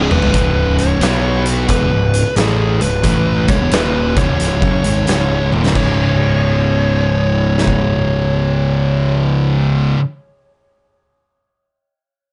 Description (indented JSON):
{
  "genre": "stoner and doom metal",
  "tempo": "89 BPM",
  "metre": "4/4",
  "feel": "swing 66% on 8ths",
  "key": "C# minor",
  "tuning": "A4 = 440 Hz",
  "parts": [
    { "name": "fuzz lead guitar", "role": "melody", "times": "0.0-9.2 s", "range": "G#4 to C#5", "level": "-23 LUFS", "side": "equal", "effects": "distortion, tape echo" },
    { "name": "thick fuzz guitar", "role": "riff", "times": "0.0-10.0 s", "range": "C#2 to B3", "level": "-22 LUFS", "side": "equal", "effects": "distortion" },
    { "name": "thick fuzz guitar", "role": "riff", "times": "0.0-10.0 s", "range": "C#2 to B3", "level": "-21 LUFS", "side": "equal", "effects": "distortion" },
    { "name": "fuzz picked electric bass", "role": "bass", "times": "0.0-9.9 s", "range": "C#1 to B1", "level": "-21 LUFS", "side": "equal", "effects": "overdrive" },
    { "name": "oversized low-tuned drum kit", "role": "drums", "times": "0.1-7.8 s", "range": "crash cymbal, hi-hat, kick drum, snare drum, toms", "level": "-21 LUFS", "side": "equal", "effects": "none" }
  ],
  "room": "little or no reverb",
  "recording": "nothing above 10.6 kHz",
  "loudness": "-15 LUFS",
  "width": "mono",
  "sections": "0.3-5.8 A section; 5.8-8.5 B section",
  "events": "drum fill 0.0-0.3, 5.4-5.8",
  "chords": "0.3 C#5; 1.0 B5; 1.7 C#m; 5.8 C#5",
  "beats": "| 0.34 1.02 1.69 2.37 | 3.04 3.72 4.40 5.08 | 5.75 6.43 7.11 7.79"
}